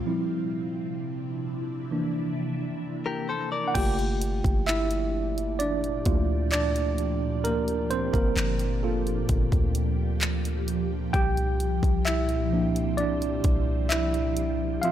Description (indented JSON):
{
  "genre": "contemporary R&B",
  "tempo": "65 BPM",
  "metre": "4/4",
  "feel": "straight",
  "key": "G dorian",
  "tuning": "A4 = 438 Hz",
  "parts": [
    { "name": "tine electric piano", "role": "accompaniment", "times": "0.0-14.9 s", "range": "E3 to G5", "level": "-28 LUFS", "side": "right 2 dB", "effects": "overdrive, fast stereo tremolo" },
    { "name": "ethereal airy pad", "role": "sustained chords", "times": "0.0-14.9 s", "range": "Bb2 to G4", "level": "-32 LUFS", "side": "left 1 dB", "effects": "ensemble chorus, built-in reverb, phaser" },
    { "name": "warm 808-style bass", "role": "bass", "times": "0.0-14.8 s", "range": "G1 to D2", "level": "-28 LUFS", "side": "equal", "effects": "none" },
    { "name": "direct-recorded clean electric guitar", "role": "arpeggios", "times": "3.1-4.0 s", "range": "G4 to D5", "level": "-31 LUFS", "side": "left 4 dB", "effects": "lush chorus, digital delay" },
    { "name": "pop drum kit", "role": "drums", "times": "3.8-14.9 s", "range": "crash cymbal, handclaps, hi-hat, kick drum", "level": "-28 LUFS", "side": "equal", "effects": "none" }
  ],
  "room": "little or no reverb",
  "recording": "none",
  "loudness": "-24 LUFS",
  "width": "side -11 dB against mid",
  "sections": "0.0-3.8 A section; 3.8-14.9 B section",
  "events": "tine electric piano solo 0.0-3.8, 3.8-14.9; break 0.1-3.8",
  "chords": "0.1 Dm9; 1.9 C9; 3.8 Gm7; 11.1 C7sus4",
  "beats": "| 0.06 0.98 1.91 2.83 | 3.75 4.68 5.60 6.52 | 7.45 8.37 9.29 10.21 | 11.14 12.06 12.98 13.91 | 14.83"
}